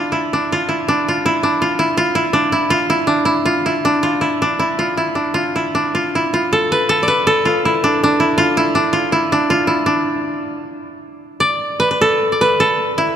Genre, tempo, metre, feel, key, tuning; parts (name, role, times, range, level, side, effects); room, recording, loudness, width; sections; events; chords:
japanese traditional, Japanese chamber music; 79 BPM; 2/4; rubato; D kumoi; A4 = 440 Hz
koto; solo; 0.0-13.2 s; D4 to D5; -14 LUFS; equal
wet church reverb, RT60 3.5 s; dark, warm production; -14 LUFS; side -9 dB against mid
0.0-11.4 A section; 11.4-13.2 B section